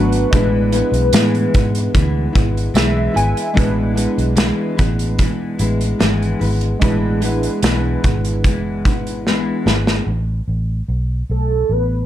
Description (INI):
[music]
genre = indie pop, bedroom pop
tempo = 74 BPM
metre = 4/4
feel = straight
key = unclear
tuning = A4 = 439 Hz
[part]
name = warm velvety synth lead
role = melody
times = 0.0-3.1, 11.3-12.1 s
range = A4 to B4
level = -21 LUFS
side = equal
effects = lush chorus, plate reverb
[part]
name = nylon-string guitar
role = accompaniment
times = 0.0-10.1 s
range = E3 to E4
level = -21 LUFS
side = left 4 dB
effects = lush chorus, vibrato effect, plate reverb
[part]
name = warm analog keys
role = accompaniment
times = 0.0-10.1 s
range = G#3 to G#5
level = -23 LUFS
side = right 3 dB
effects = chorus, cassette tape, plate reverb
[part]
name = vintage muted fingered electric bass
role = bass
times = 0.0-12.0 s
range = F#1 to A2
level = -19 LUFS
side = equal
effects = none
[part]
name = loose indie drum kit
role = drums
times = 0.1-10.1 s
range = hi-hat, kick drum, snare drum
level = -18 LUFS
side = equal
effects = none
[part]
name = tambourine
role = percussion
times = 1.1-2.9 s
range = none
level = -29 LUFS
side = right 12 dB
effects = none
[sound]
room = moderate small room reverb, RT60 0.5 s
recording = dark, warm production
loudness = -15 LUFS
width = side -12 dB against mid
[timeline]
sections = 0.0-3.6 A section; 3.6-10.1 B section; 10.1-12.1 C section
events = synth keys fill 2.4-3.6; drum fill 9.3-10.1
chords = 0.3 E7/A; 3.6 E7; 10.1 Asus2